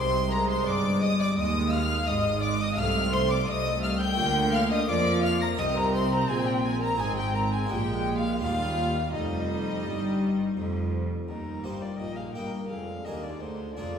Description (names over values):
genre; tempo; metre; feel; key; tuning
classical, baroque-style concerto movement with solo episodes; 85 BPM; 4/4; straight; Eb major; A4 = 438 Hz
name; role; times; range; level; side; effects
rich chamber violin section; melody; 0.0-14.0 s; D4 to Bb6; -36 LUFS; left 2 dB; none
rich violin; melody; 0.0-14.0 s; Bb4 to Bb6; -33 LUFS; left 2 dB; none
warm chamber violin section; second line; 0.0-14.0 s; Eb4 to Bb5; -32 LUFS; left 2 dB; none
harpsichord; accompaniment; 0.0-14.0 s; C2 to Bb4; -35 LUFS; left 1 dB; none
rich chamber viola section; accompaniment; 0.0-14.0 s; G3 to C4; -33 LUFS; right 1 dB; none
rich chamber double bass section; bass; 0.0-14.0 s; F1 to F2; -32 LUFS; right 2 dB; none
rich studio cello section; bass; 0.0-14.0 s; C2 to F3; -31 LUFS; right 2 dB; none
room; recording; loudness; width
wet scoring stage reverb, RT60 1.7 s; heard from further back in the room; -24 LUFS; side -7 dB against mid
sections
0.0-11.3 A section; 11.3-14.0 B section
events
none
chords
0.0 Ab; 2.8 F13/C; 4.2 Bb/D; 5.6 Cm; 7.0 Ab; 7.7 Bb7; 8.4 Eb; 12.7 Bb7/F